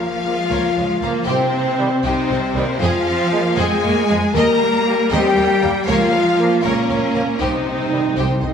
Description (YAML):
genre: cinematic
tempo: 78 BPM (dotted quarters)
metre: 6/8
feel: straight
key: unclear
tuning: A4 = 439 Hz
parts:
  - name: warm symphonic violin section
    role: melody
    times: 0.0-8.5 s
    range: Bb4 to Bb5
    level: -25 LUFS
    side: left 5 dB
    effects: none
  - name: rich symphonic viola section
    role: accompaniment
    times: 0.0-8.5 s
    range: G3 to Eb4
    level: -23 LUFS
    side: right 2 dB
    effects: none
  - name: clear French horn section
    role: sustained chords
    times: 0.0-8.5 s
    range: Bb3 to Bb4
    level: -20 LUFS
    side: left 2 dB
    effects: none
  - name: rich symphonic cello section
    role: bass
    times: 0.0-8.5 s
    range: Bb2 to Bb3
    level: -23 LUFS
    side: right 2 dB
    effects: none
  - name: warm trombone section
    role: sustained chords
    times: 0.2-8.0 s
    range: Eb3 to Bb3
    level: -29 LUFS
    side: right 3 dB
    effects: none
  - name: warm symphonic violin section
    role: second line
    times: 0.5-8.5 s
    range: G4 to Bb5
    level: -26 LUFS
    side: left 2 dB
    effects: none
  - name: warm symphonic double bass section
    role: bass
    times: 0.5-8.5 s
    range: C2 to F2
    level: -25 LUFS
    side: right 4 dB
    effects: none
  - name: timpani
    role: percussion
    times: 1.3-2.0, 7.4-8.5 s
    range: C3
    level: -27 LUFS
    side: equal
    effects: none
room: wet scoring stage reverb, RT60 1.8 s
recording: none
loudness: -15 LUFS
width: side -7 dB against mid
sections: 0.0-8.5 A section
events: timpani fill 7.4-8.5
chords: 0.0 Bbm; 1.3 Cm; 2.8 Fm; 4.3 Eb; 5.9 Bbm/Db; 7.4 Cm